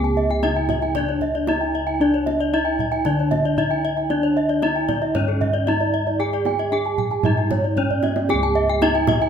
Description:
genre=Balinese gamelan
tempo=114 BPM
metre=4/4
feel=straight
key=C# pelog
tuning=A4 = 439 Hz
part: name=gamelan-type bronze metallophone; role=melody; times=0.0-9.3 s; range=C#4 to G#4-45c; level=-23 LUFS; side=equal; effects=none
part: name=gamelan-type bronze metallophone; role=arpeggios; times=0.0-9.2 s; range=A4-40c to A5-40c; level=-25 LUFS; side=left 6 dB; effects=none
part: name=gamelan-type bossed gongs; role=bass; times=0.0-9.3 s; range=C#2 to G#4-45c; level=-24 LUFS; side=equal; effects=none
part: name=kendang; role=percussion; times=0.0-9.3 s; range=none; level=-28 LUFS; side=right 4 dB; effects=none
part: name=gamelan-type bronze metallophone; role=arpeggios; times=0.2-9.3 s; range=C#5 to A5-40c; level=-26 LUFS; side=right 5 dB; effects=none
room=moderate recital hall reverb, RT60 1.6 s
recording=minimal, uncompressed stereo recording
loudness=-18 LUFS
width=side -8 dB against mid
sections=0.0-9.3 A section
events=drum fill 7.9-8.3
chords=none

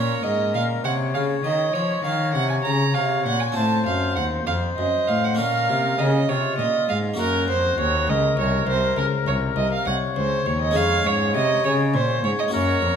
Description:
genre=classical, baroque-style sonata movement with continuo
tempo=67 BPM (dotted quarters)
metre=12/8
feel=rubato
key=Bb minor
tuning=A4 = 440 Hz
part: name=warm oboe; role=melody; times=0.0-13.0 s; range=F4 to Db5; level=-28 LUFS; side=left 8 dB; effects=none
part: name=rich violin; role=second line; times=0.0-13.0 s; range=Bb4 to Bb5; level=-23 LUFS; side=right 4 dB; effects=none
part: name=harpsichord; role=accompaniment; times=0.0-13.0 s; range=C2 to Ab4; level=-26 LUFS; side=left 3 dB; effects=none
part: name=rich cello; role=bass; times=0.0-12.9 s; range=C2 to F3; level=-25 LUFS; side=equal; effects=none
room=wet recital hall reverb, RT60 1.6 s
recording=none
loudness=-19 LUFS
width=side -7 dB against mid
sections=0.0-13.0 A section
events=none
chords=0.0 Bbm; 3.6 F; 5.4 Bbm; 7.2 Gb; 10.8 Db/F

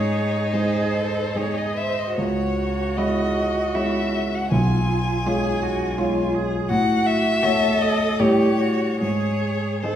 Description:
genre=classical, slow romantic movement for piano quartet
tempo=72-83 BPM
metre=3/4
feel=rubato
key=C# minor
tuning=A4 = 440 Hz
part: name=rich violin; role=melody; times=0.0-10.0 s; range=B#4 to G#5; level=-25 LUFS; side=left 3 dB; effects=none
part: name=clear violin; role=second line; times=0.0-10.0 s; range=D#4 to G#4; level=-31 LUFS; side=left 2 dB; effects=none
part: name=rich cello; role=second line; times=0.0-10.0 s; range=E#4 to B#4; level=-27 LUFS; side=right 4 dB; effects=none
part: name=warm grand piano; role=accompaniment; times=0.0-10.0 s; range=B1 to D#5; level=-22 LUFS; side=equal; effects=none
room=wet recital hall reverb, RT60 1.3 s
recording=heard from further back in the room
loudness=-19 LUFS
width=side -10 dB against mid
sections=0.0-10.0 A section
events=none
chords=0.0 G#; 2.2 C#m; 4.5 C#7/B; 6.7 F#m/A; 8.2 A7; 9.0 G#5

